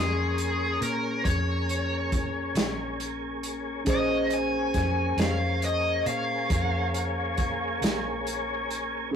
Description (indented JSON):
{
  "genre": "slow blues",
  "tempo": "46 BPM (dotted quarters)",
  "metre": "12/8",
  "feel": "straight",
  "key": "Bb minor",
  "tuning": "A4 = 439 Hz",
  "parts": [
    { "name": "smooth overdriven lead guitar", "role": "melody", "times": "0.0-8.7 s", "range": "Ab4 to Ab5", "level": "-29 LUFS", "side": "left 1 dB", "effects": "none" },
    { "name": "tine electric piano", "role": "accompaniment", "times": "0.0-9.2 s", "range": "Db4 to C6", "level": "-32 LUFS", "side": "equal", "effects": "none" },
    { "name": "tonewheel organ", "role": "sustained chords", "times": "0.0-9.2 s", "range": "Bb3 to Ab4", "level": "-32 LUFS", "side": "equal", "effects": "slow rotary speaker, chorus vibrato" },
    { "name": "hollow-body short-scale fingered electric bass", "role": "bass", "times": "0.0-9.1 s", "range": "Bb1 to Bb2", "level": "-32 LUFS", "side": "equal", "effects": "none" },
    { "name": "vintage drum kit", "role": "drums", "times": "0.4-8.9 s", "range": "hi-hat, kick drum, snare drum", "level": "-29 LUFS", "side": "right 1 dB", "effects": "none" }
  ],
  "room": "moderate studio reverb, RT60 0.6 s",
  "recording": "rough rehearsal-room recording, warm saturation",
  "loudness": "-25 LUFS",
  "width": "side -7 dB against mid",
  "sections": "0.0-9.2 A section",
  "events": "none",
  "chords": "0.0 Bbm9"
}